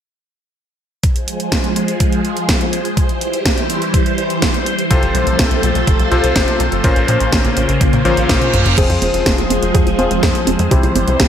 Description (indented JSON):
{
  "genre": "italo disco",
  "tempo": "124 BPM",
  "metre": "4/4",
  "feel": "straight",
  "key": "F harmonic minor",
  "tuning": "A4 = 442 Hz",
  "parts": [
    { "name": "phased string machine", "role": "sustained chords", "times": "1.2-11.3 s", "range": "Db3 to C5", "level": "-18 LUFS", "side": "equal", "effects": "ensemble chorus, phaser" },
    { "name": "electronic kick drum", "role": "drums", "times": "1.0-11.3 s", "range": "none", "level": "-17 LUFS", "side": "equal", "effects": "none" },
    { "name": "house drum kit", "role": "drums", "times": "1.0-11.3 s", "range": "crash cymbal, hi-hat, snare drum, toms", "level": "-19 LUFS", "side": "right 1 dB", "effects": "gated reverb" },
    { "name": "bright electric grand piano", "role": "stabs", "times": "4.9-11.3 s", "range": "Bb2 to C5", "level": "-19 LUFS", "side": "left 3 dB", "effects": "low-pass filter, ping-pong delay" },
    { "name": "tight sequencer bass", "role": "bass", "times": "4.9-11.3 s", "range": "F1 to Bb2", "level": "-19 LUFS", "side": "equal", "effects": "tube saturation" },
    { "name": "reverse cymbal", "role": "sound effects", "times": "8.0-8.8 s", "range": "none", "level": "-23 LUFS", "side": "right 6 dB", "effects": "none" },
    { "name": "warbly dusty pluck", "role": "arpeggios", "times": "8.8-11.3 s", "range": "G3 to Ab4", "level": "-21 LUFS", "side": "right 5 dB", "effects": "chorus, ping-pong delay" }
  ],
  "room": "light reverb",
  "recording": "none",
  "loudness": "-13 LUFS",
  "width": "side -9 dB against mid",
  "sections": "1.0-8.8 A section; 8.8-11.3 B section",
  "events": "reverse cymbal 8.0-8.8; drum fill 8.1-8.8; filter sweep on synth arpeggio sound 8.8-11.3",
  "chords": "1.0 Fm; 3.0 C; 4.9 F; 6.8 Bbmadd9; 8.8 Fm; 10.7 C"
}